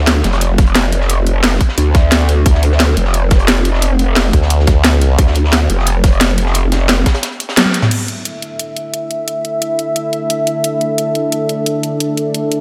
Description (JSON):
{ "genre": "dark technical drum and bass", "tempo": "176 BPM", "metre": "4/4", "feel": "straight", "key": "D minor", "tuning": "A4 = 442 Hz", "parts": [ { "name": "growl bass", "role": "bass", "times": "0.0-7.0 s", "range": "F1 to D2", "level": "-15 LUFS", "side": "equal", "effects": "chorus, overdrive, sidechain pumping" }, { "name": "crunchy breakbeat drum kit", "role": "drums", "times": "0.1-7.9 s", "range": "hi-hat, snare drum", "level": "-27 LUFS", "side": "equal", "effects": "none" }, { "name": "drum and bass drum kit", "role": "drums", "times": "0.1-12.6 s", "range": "crash cymbal, hi-hat, snare drum, toms", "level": "-18 LUFS", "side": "equal", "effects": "overdrive" }, { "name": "electronic kick drum", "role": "drums", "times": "0.6-7.1 s", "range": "none", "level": "-14 LUFS", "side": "equal", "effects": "overdrive" }, { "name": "formant-sweep wobble bass", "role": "bass", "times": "4.3-5.2 s", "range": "D2", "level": "-13 LUFS", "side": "equal", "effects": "chorus" }, { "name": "dark analog pad", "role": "sustained chords", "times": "7.9-12.6 s", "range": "D4 to E5", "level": "-19 LUFS", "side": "equal", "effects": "chorus, sidechain pumping" } ], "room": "moderate lush hall reverb, RT60 1.9 s, digital ambience", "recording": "none", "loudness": "-14 LUFS", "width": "mono", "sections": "0.0-7.9 A section; 7.9-12.6 B section", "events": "drum fill 7.6-7.9; band accent 7.6", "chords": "0.0 Dm; 7.9 D5" }